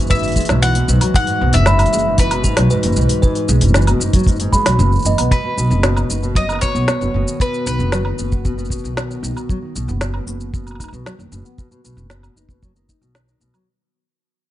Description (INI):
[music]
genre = folktronica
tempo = 115 BPM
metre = 4/4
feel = straight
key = B major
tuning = A4 = 440 Hz
[part]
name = warbly tape-like pad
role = sustained chords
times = 0.0-13.6 s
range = D#3 to F#4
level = -26 LUFS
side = left 1 dB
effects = chorus, built-in reverb
[part]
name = nylon-string guitar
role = arpeggios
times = 0.0-13.7 s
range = G#2 to D#4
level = -23 LUFS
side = equal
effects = ping-pong delay
[part]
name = upright bass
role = bass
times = 0.0-13.5 s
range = F#1 to B1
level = -18 LUFS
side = equal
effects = tube saturation
[part]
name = organic electronic drum kit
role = drums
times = 0.0-13.6 s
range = hi-hat, shaker, snare drum, woodblock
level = -22 LUFS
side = equal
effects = overdrive
[part]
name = bowl-back mandolin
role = melody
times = 0.1-9.2 s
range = B4 to F#5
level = -22 LUFS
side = left 1 dB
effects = ping-pong delay
[part]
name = music box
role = second line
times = 0.1-5.3 s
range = F#4 to B5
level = -24 LUFS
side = right 3 dB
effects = ping-pong delay
[part]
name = kick drum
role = drums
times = 0.1-13.0 s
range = none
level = -16 LUFS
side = equal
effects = none
[sound]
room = light reverb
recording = nothing above 10.8 kHz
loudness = -14 LUFS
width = side -14 dB against mid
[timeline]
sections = 0.0-5.3 A section; 5.3-13.7 B section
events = fade-out 5.3-13.7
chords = 0.0 Eadd9; 5.3 B